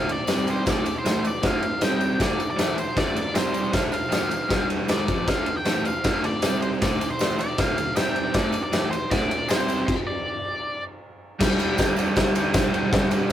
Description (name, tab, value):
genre	garage rock duo or trio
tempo	156 BPM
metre	4/4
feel	straight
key	D minor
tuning	A4 = 439 Hz
part	octave-fuzz lead guitar	melody	0.0-10.8 s	C5 to G5	-28 LUFS	left 1 dB	distortion
part	raw garage guitar	riff	0.0-13.3 s	D2 to C4	-26 LUFS	right 1 dB	overdrive
part	oversized low-tuned drum kit	drums	0.1-13.2 s	crash cymbal, kick drum, ride cymbal, snare drum	-24 LUFS	equal	none
part	tambourine	percussion	0.1-13.3 s	none	-44 LUFS	left 5 dB	none
room	moderate studio ambience, RT60 0.5 s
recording	rough rehearsal-room recording, warm saturation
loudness	-21 LUFS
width	side -11 dB against mid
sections	0.0-11.4 A section; 11.4-13.3 B section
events	stop 9.9-11.4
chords	0.3 C5; 0.7 Dm; 1.8 C5; 2.2 D5; 3.4 C5; 3.7 Dm; 4.5 G5; 4.9 Dm; 6.4 C5; 6.8 Dm; 8.0 C5; 8.3 D5; 9.5 C5; 9.9 N.C.; 11.4 G5